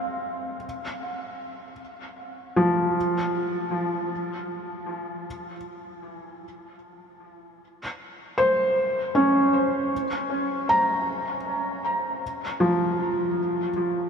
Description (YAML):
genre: ambient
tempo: free time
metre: none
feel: none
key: unclear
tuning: A4 = 439 Hz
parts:
  - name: felt-muted upright piano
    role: solo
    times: 0.0-14.1 s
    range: F3 to Bb5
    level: -24 LUFS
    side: equal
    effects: tape echo
room: wet huge ambient reverb, RT60 8.0 s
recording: none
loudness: -23 LUFS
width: side -6 dB against mid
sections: 0.0-7.6 A section; 7.6-14.1 B section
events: none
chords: 0.0 Csus4; 0.6 N.C.; 9.9 Bbsus2; 12.2 Fsus4